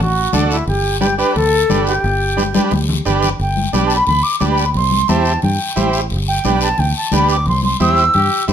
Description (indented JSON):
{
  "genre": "latin, cumbia",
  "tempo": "177 BPM",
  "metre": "4/4",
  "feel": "straight",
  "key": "G major",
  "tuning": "A4 = 441 Hz",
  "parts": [
    { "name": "reedy concert flute", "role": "melody", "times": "0.0-8.4 s", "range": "D4 to E6", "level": "-17 LUFS", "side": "equal", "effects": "plate reverb" },
    { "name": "fingered electric bass", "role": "bass", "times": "0.0-8.5 s", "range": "G1 to G2", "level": "-18 LUFS", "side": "equal", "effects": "none" },
    { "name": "congas", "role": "percussion", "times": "0.0-8.5 s", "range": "none", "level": "-22 LUFS", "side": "left 3 dB", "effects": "none" },
    { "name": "overdriven combo organ", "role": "accompaniment", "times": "0.3-8.5 s", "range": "D4 to C5", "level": "-19 LUFS", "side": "right 4 dB", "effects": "none" },
    { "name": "guiro", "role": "percussion", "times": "0.3-8.5 s", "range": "none", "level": "-26 LUFS", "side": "left 6 dB", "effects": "none" },
    { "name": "bright trombone", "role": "second line", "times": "8.1-8.5 s", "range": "E4 to G4", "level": "-20 LUFS", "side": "left 5 dB", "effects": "none" }
  ],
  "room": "moderate studio reverb, RT60 0.6 s",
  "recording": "none",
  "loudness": "-13 LUFS",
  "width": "side -9 dB against mid",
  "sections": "0.0-3.4 A section; 3.4-8.5 B section",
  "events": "drum fill 2.5-3.4",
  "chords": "0.0 D; 0.7 G; 4.8 C; 6.1 G; 7.5 C"
}